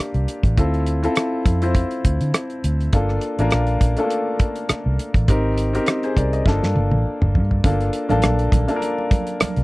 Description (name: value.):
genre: lush 1970s-style soul.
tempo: 102 BPM.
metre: 4/4.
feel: swing 54% on 16ths.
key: G dorian.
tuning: A4 = 440 Hz.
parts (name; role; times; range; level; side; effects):
clear baby grand piano; accompaniment; 0.0-9.6 s; A3 to Eb5; -22 LUFS; left 1 dB; none.
vintage muted fingered electric bass; bass; 0.1-9.6 s; G1 to D3; -20 LUFS; equal; none.
cloth-damped thuddy drum kit; drums; 0.1-9.6 s; hi-hat, kick drum, rim click, snare drum, toms; -19 LUFS; equal; none.
congas; percussion; 7.6-9.6 s; none; -28 LUFS; right 6 dB; none.
room: little or no reverb.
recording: dry, close 1970s-style studio recording.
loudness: -17 LUFS.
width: side -21 dB against mid.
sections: 0.0-7.6 A section; 7.6-9.6 A section.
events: drum fill 6.5-7.6.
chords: 0.0 Gm9; 0.6 Dm7; 2.9 Gm9 (rootless); 5.3 Abmaj7; 6.5 Gm7; 7.6 Gm9 (rootless).